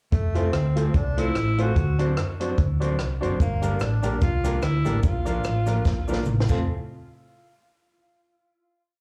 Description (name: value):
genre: ska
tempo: 147 BPM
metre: 4/4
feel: swing 57% on 8ths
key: F major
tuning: A4 = 438 Hz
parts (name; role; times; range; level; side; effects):
- breathy tenor saxophone; melody; 0.1-6.2 s; A3 to Gb4; -33 LUFS; equal; slapback echo, analog delay
- hollow-body short-scale fingered electric bass; bass; 0.1-6.7 s; F1 to F#2; -27 LUFS; equal; none
- compact cocktail drum kit; drums; 0.1-6.6 s; crash cymbal, hi-hat, kick drum, rim click, snare drum, toms; -27 LUFS; equal; vintage 12-bit sampler grit
- electric guitar at the edge of break-up; accompaniment; 0.3-6.6 s; F3 to F4; -35 LUFS; equal; spring reverb, slapback echo
- dark upright piano; stabs; 0.3-6.6 s; C4 to C5; -33 LUFS; equal; slapback echo
- cabasa; percussion; 3.4-6.7 s; none; -52 LUFS; equal; none
room: light reverb, small room ambience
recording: live gig heard through the venue's PA, cassette tape, club reverb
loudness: -24 LUFS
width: mono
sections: 0.1-6.7 head; 6.7-8.3 final hit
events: drum fill 5.9-6.7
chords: 0.1 F; 1.8 D7; 3.4 Gm; 5.0 Bb; 6.5 F; 6.7 N.C.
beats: | 0.13 0.54 0.95 1.35 | 1.76 2.17 2.58 2.99 | 3.40 3.81 4.22 4.62 | 5.03 5.44 5.85 6.26